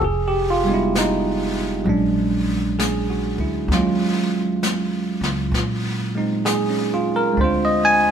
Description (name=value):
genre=jazz ballad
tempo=65 BPM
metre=4/4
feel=swing 67% on 8ths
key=unclear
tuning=A4 = 439 Hz
part: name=bell-like tine electric piano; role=accompaniment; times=0.0-8.1 s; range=F#3 to Ab5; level=-19 LUFS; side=right 2 dB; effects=none
part: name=upright bass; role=bass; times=0.0-8.1 s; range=F1 to Bb2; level=-26 LUFS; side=equal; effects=none
part: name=jazz brush drum kit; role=drums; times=0.0-8.1 s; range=brushed snare drum, hi-hat, snare drum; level=-28 LUFS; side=left 3 dB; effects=none
room=moderate stone room reverb, RT60 1.1 s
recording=band playing live in one room, lossy compression artefacts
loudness=-18 LUFS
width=side -8 dB against mid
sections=0.0-8.1 A section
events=none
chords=0.0 Fm7b5; 1.9 Bb7alt; 3.7 Ebm11; 7.4 Dm7b5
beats=| 0.02 0.94 1.86 2.78 | 3.70 4.61 5.53 6.45 | 7.38